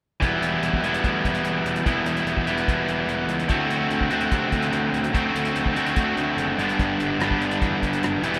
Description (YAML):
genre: indie rock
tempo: 146 BPM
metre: 4/4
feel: straight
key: E minor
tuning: A4 = 440 Hz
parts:
  - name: cranked stack guitar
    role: riff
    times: 0.2-8.4 s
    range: G2 to F#4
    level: -24 LUFS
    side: equal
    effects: overdrive, spring reverb
  - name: fuzz picked electric bass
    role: bass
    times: 0.2-8.4 s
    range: E1 to C3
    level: -34 LUFS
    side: equal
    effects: overdrive
  - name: cloth-damped thuddy drum kit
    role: drums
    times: 0.2-8.4 s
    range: hi-hat, kick drum, rim click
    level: -30 LUFS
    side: equal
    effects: none
room: studio ambience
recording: rough home demo mix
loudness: -23 LUFS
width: mono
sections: 0.2-8.4 A section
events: none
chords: 0.2 Em; 3.5 D5; 6.6 G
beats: | 0.22 0.63 1.04 1.45 | 1.86 2.27 2.68 3.09 | 3.50 3.92 4.33 4.74 | 5.15 5.56 5.97 6.38 | 6.79 7.20 7.61 8.02